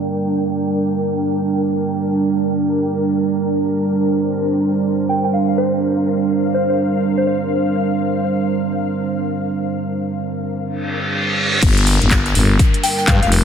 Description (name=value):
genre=bass house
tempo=124 BPM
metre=4/4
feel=swing 61% on 16ths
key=G minor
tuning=A4 = 439 Hz
part: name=dark analog pad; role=sustained chords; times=0.0-13.4 s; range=G3 to C5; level=-18 LUFS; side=right 3 dB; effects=chorus, sidechain pumping
part: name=ethereal airy pad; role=texture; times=0.0-13.4 s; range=D4 to G5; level=-24 LUFS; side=left 3 dB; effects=ensemble chorus, built-in reverb, sidechain pumping
part: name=soft synth bell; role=melody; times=5.1-7.4, 12.8-13.3 s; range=C5 to G5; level=-23 LUFS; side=left 2 dB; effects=chorus, phaser, tape echo
part: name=reverse cymbal and downlifter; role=sound effects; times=10.8-13.4 s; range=none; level=-21 LUFS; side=equal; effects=none
part: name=growling FM bass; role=bass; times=11.6-13.4 s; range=F1 to G2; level=-15 LUFS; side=left 1 dB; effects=sidechain pumping
part: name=electronic kick drum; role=drums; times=11.6-13.2 s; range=none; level=-15 LUFS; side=left 1 dB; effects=none
part: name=house drum kit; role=drums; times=11.6-13.4 s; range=crash cymbal, handclaps, hi-hat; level=-20 LUFS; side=equal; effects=none
part: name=jazz brush drum kit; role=drums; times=11.6-13.4 s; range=hi-hat, snare drum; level=-29 LUFS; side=right 3 dB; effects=none
room=wet plate reverb, RT60 2.6 s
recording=dreamy mix soaked in reverb, low-pass filter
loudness=-15 LUFS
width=side -8 dB against mid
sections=0.0-11.6 A section; 11.6-13.4 B section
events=filter sweep 0.0-11.6; reverse cymbal 10.8-11.6; drop 11.6-13.4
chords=0.0 Gm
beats=| 0.01 0.50 0.98 1.47 | 1.95 2.43 2.92 3.40 | 3.88 4.37 4.85 5.33 | 5.82 6.30 6.79 7.27 | 7.75 8.24 8.72 9.21 | 9.69 10.17 10.66 11.14 | 11.63 12.11 12.59 13.08